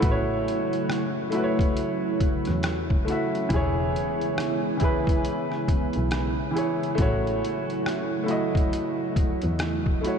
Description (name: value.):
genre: lo-fi hip hop.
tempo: 69 BPM.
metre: 4/4.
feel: swing 61% on 16ths.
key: unclear.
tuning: A4 = 440 Hz.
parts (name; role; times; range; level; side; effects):
warm upright piano; accompaniment; 0.0-10.2 s; E3 to E5; -26 LUFS; equal; cassette tape, low-pass filter.
dark analog pad; sustained chords; 0.0-10.2 s; C#3 to E4; -30 LUFS; right 1 dB; chorus, low-pass filter.
rich double bass; bass; 0.0-9.8 s; E1 to E2; -29 LUFS; equal; none.
trip hop sampler-style drum kit; drums; 0.0-10.2 s; hi-hat, kick drum, rim click; -27 LUFS; equal; none.
room: moderate huge ambient reverb, RT60 9.3 s.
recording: dreamy mix soaked in reverb.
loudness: -23 LUFS.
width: side -7 dB against mid.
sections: 0.0-10.2 A section.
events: none.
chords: 0.0 A6; 3.5 E6; 7.0 A6.